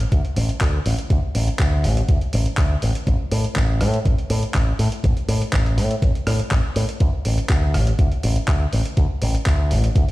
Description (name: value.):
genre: nu-disco, nu disco.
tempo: 122 BPM.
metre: 4/4.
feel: straight.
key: unclear.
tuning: A4 = 440 Hz.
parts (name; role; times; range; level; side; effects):
picked electric bass with an envelope filter; bass; 0.0-10.0 s; A1 to A2; -20 LUFS; equal; none.
dusty soul sampler-style drum kit; drums; 0.0-10.1 s; handclaps, hi-hat, rim click; -29 LUFS; equal; none.
electronic kick drum; drums; 0.1-10.1 s; none; -18 LUFS; equal; none.
room: digital ambience.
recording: played on a big sound system in a bare room, stone room reverb.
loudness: -17 LUFS.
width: side -18 dB against mid.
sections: 0.0-10.1 A section.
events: none.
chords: none.